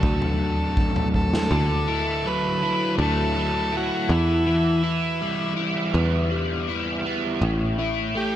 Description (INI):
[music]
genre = psychedelic rock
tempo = 81 BPM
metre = 4/4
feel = straight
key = unclear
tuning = A4 = 442 Hz
[part]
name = combo organ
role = melody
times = 0.0-8.4 s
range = E4 to B4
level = -28 LUFS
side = equal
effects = analog delay
[part]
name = overdriven electric guitar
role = riff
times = 0.0-8.4 s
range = A2 to F#4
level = -24 LUFS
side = equal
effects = rotary speaker
[part]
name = picked electric bass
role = bass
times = 0.0-8.4 s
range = A1 to E2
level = -26 LUFS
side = equal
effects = none
[part]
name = raw garage drum kit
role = drums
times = 0.0-1.5 s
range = kick drum, snare drum, toms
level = -24 LUFS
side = equal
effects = none
[sound]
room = moderate huge ambient reverb, RT60 5.8 s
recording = dreamy mix soaked in reverb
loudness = -21 LUFS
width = side -11 dB against mid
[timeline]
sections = 0.0-1.5 A section; 1.5-8.4 B section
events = drum fill 1.1-1.5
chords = 0.0 D; 1.5 Dadd9; 4.1 Em; 7.4 A5